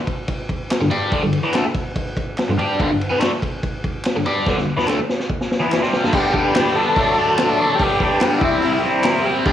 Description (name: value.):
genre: garage rock duo or trio.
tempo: 143 BPM.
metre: 4/4.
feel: straight.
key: G major.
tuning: A4 = 440 Hz.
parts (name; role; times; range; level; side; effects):
vintage drum kit; drums; 0.1-9.5 s; crash cymbal, hi-hat, kick drum, ride cymbal, snare drum; -22 LUFS; equal; cassette tape.
group handclap; percussion; 0.7-9.1 s; none; -32 LUFS; right 1 dB; none.
biting overdriven guitar; riff; 0.8-9.5 s; G2 to G4; -18 LUFS; left 1 dB; phaser, cassette tape.
overdriven combo organ; melody; 6.1-9.5 s; E4 to A4; -19 LUFS; left 1 dB; cassette tape.
room: light reverb, small room ambience.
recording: home recording on cassette, studio reverb.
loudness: -16 LUFS.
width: side -10 dB against mid.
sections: 0.0-6.1 A section; 6.1-9.5 B section.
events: drum fill 4.5-6.1.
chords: 0.0 G5; 6.1 G; 7.0 D; 7.8 G; 8.4 C.